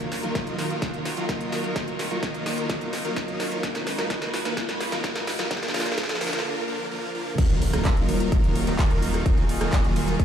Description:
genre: EDM, festival progressive house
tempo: 128 BPM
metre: 4/4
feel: straight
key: Eb harmonic minor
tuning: A4 = 437 Hz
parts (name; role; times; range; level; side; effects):
- bright chamber string section; sustained chords; 0.0-10.2 s; Eb3 to Cb5; -33 LUFS; equal; sidechain pumping
- big supersaw lead; riff; 0.0-10.2 s; D3 to Eb5; -28 LUFS; right 1 dB; sidechain pumping, dub echo
- wide detuned saw bass; bass; 0.0-10.2 s; Eb1 to Ab2; -33 LUFS; equal; chorus, sidechain pumping
- big-room dance drum kit; drums; 0.0-10.2 s; crash cymbal, handclaps, hi-hat, ride cymbal, rim click, snare drum; -31 LUFS; equal; high-pass filter on hats, high-pass filter on snare, high-pass filter on cymbals, high-pass filter on room
- riser and impact; sound effects; 1.9-9.3 s; none; -34 LUFS; equal; none
- electronic kick drum; drums; 0.4-10.2 s; none; -24 LUFS; equal; none
room: light reverb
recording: played on a big sound system in a bare room, large studio reverb, high-pass filter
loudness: -23 LUFS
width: side -9 dB against mid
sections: 0.0-7.4 A section; 7.4-10.2 B section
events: build-up 0.0-7.4; drum fill 0.0-6.4; filter sweep on supersaw synth 0.0-7.4; riser 1.9-6.4; break 6.4-7.4; drop 7.4-10.2; impact 7.4-9.3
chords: 0.0 Ebmadd9; 3.6 Abm7; 5.5 Bb; 7.4 Ebmadd9

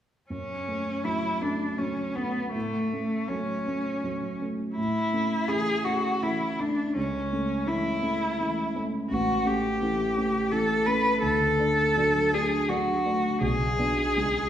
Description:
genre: classical, romantic duo for cello and grand piano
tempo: 76-86 BPM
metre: 3/4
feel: rubato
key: F# minor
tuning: A4 = 439 Hz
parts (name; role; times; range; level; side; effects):
- rich cello; melody; 0.3-14.5 s; A3 to B4; -26 LUFS; left 1 dB; none
- dark concert grand piano; accompaniment; 0.3-14.5 s; A1 to D4; -28 LUFS; right 1 dB; none
room: wet recital hall reverb, RT60 1.5 s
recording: recorded in a church or concert hall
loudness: -24 LUFS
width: side -10 dB against mid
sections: 0.3-14.5 A section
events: none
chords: 0.3 F#m; 2.5 F#m/A; 4.8 A; 7.0 A/C#; 9.1 A7; 11.2 D; 13.4 G#dim/B

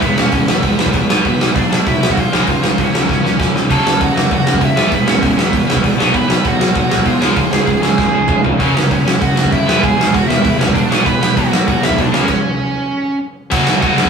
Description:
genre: punk rock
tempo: 196 BPM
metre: 4/4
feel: straight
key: unclear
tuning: A4 = 440 Hz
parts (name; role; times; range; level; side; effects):
- biting overdriven guitar; melody; 0.0-14.1 s; B3 to B5; -19 LUFS; right 2 dB; none
- tight distorted guitar; riff; 0.0-14.1 s; F#2 to C#4; -18 LUFS; left 4 dB; distortion
- fuzz picked electric bass; bass; 0.0-14.1 s; E1 to G#2; -24 LUFS; right 2 dB; none
- big rock drum kit; drums; 0.0-14.1 s; crash cymbal, hi-hat, kick drum, snare drum, toms; -15 LUFS; right 1 dB; none
- sludgy distorted guitar; riff; 3.7-14.1 s; E2 to C#4; -21 LUFS; right 8 dB; overdrive
- heavy high-gain guitar; riff; 13.5-14.1 s; F#2 to F#3; -22 LUFS; right 2 dB; none
room: moderate stone room reverb, RT60 1.1 s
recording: rough rehearsal-room recording, warm saturation, studio reverb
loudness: -12 LUFS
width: side -6 dB against mid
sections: 0.0-13.5 A section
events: drum fill 3.1-3.7, 8.0-8.6; stop 12.3-13.5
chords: 0.0 E; 1.1 Bm; 2.3 C#; 3.7 F#m; 4.8 E; 6.0 B5; 7.2 C#; 8.6 F#5; 9.7 E; 10.9 Bm; 12.1 C#5; 13.5 F#m

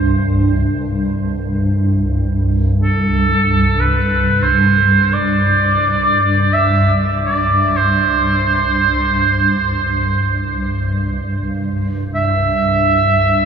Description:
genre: world meditative, free-time meditation music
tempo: free time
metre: none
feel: none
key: C major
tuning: A4 = 441 Hz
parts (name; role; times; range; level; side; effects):
- swarming drone; drone; 0.0-13.5 s; C2 to G2; -16 LUFS; equal; built-in reverb, wide subtle chorus
- crotales; texture; 0.0-1.6 s; none; barely audible; none; none
- clear oboe; melody; 2.8-13.5 s; A4 to E5; -16 LUFS; right 2 dB; diffuse ambient delay
room: wet huge ambient reverb, RT60 7.4 s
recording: dreamy mix soaked in reverb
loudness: -13 LUFS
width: side -7 dB against mid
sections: 0.0-13.5 A section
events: none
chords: none

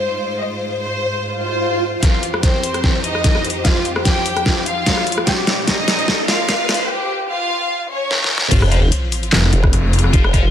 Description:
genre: heavy wobble dubstep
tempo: 148 BPM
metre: 4/4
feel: swing 54% on 16ths, half-time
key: F minor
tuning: A4 = 438 Hz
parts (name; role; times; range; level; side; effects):
- warm studio violin section; melody; 0.0-8.4 s; C4 to G5; -21 LUFS; left 1 dB; ping-pong delay
- clear studio string section; sustained chords; 0.0-10.5 s; F2 to C5; -27 LUFS; left 1 dB; sidechain pumping
- swell, riser and sub drop; sound effects; 1.3-10.1 s; none; -25 LUFS; right 1 dB; none
- dubstep drum kit; drums; 2.0-10.4 s; crash cymbal, handclaps, hi-hat, rim click, snare drum; -18 LUFS; equal; none
- electronic kick drum; drums; 2.0-10.4 s; none; -16 LUFS; equal; overdrive
- high-gain distorted guitar; stabs; 8.5-10.4 s; F4 to F5; -24 LUFS; left 4 dB; distortion, ping-pong delay
- formant-sweep wobble bass; bass; 8.5-10.5 s; F1; -16 LUFS; equal; chorus, overdrive
- snarling distorted saw bass; bass; 9.3-10.1 s; F1; -14 LUFS; equal; distortion, overdrive
room: light reverb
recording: high-pass filter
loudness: -15 LUFS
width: side -10 dB against mid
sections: 0.0-2.0 A section; 2.0-8.5 B section; 8.5-10.5 C section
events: swell 1.3-2.0; build-up 2.0-8.5; drum fill 2.0-6.9, 8.1-8.5; riser 2.0-6.9; filter sweep 2.0-8.5; break 6.9-8.5; drop 8.5-10.5; impact 8.5-10.1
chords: 0.0 Ab6; 2.0 Fsus2; 5.3 Bbmadd9; 8.5 F5

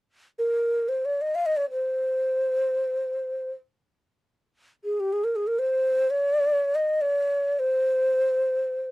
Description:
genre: Arabic maqam ensemble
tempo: free time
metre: none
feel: none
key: C maqam bayati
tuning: A4 = 439 Hz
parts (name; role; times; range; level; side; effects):
- breathy mellow ney; solo; 0.4-8.9 s; G4 to F5; -22 LUFS; equal; none
room: little or no reverb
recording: dry, close 1970s-style studio recording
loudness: -22 LUFS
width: side -21 dB against mid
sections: 0.0-8.9 A section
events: none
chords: none

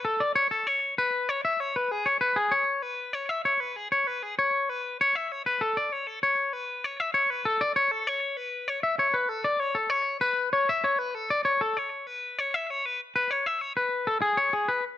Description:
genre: rock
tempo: 65 BPM (dotted quarters)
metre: 6/8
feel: straight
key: A major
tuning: A4 = 440 Hz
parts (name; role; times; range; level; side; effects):
- twangy electric guitar; solo; 0.0-14.8 s; G#4 to E5; -24 LUFS; left 2 dB; slapback echo
room: light reverb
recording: none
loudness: -24 LUFS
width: side -12 dB against mid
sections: 0.0-13.0 A section; 13.0-15.0 B section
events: none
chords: none

